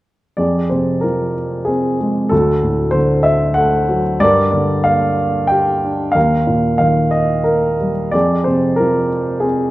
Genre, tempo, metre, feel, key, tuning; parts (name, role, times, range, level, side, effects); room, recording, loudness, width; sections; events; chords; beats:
classical, lyrical solo piano; 92 BPM; 3/4; rubato; F dorian; A4 = 441 Hz
dark baby grand piano; solo; 0.4-9.7 s; D2 to G5; -13 LUFS; equal
moderate recital hall reverb, RT60 1.7 s; dark, warm production; -13 LUFS; side -17 dB against mid
0.4-9.7 A section
0.4 Fm; 2.3 D; 4.2 Gm; 6.2 Ebadd9; 8.1 Fm
| 0.38 1.03 1.68 | 2.32 2.94 3.58 | 4.22 4.86 5.50 | 6.16 6.81 7.47 | 8.14 8.80 9.44